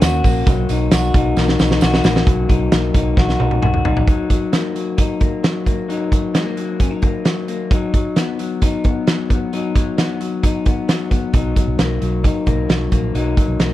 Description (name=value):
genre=jangly indie pop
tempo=132 BPM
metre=4/4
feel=straight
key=B major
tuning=A4 = 437 Hz
part: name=electric guitar through a small old amp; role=arpeggios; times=0.0-13.7 s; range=F#3 to F#4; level=-20 LUFS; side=left 4 dB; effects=slapback echo
part: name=vintage muted fingered electric bass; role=bass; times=0.0-4.0, 11.3-13.7 s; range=A#1 to D#2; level=-20 LUFS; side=right 1 dB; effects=none
part: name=loose indie drum kit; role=drums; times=0.0-13.7 s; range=hi-hat, kick drum, snare drum, toms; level=-16 LUFS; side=right 1 dB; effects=none
part: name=tambourine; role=percussion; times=0.0-2.1 s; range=none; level=-36 LUFS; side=right 15 dB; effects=none
room=little or no reverb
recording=none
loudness=-15 LUFS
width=side -14 dB against mid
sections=0.0-2.3 A section; 2.3-4.1 B section; 4.1-13.7 C section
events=drum fill 1.4-2.3, 3.2-4.1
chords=0.5 Bmaj7; 4.1 F#6; 7.7 B/F#; 11.3 Bmaj7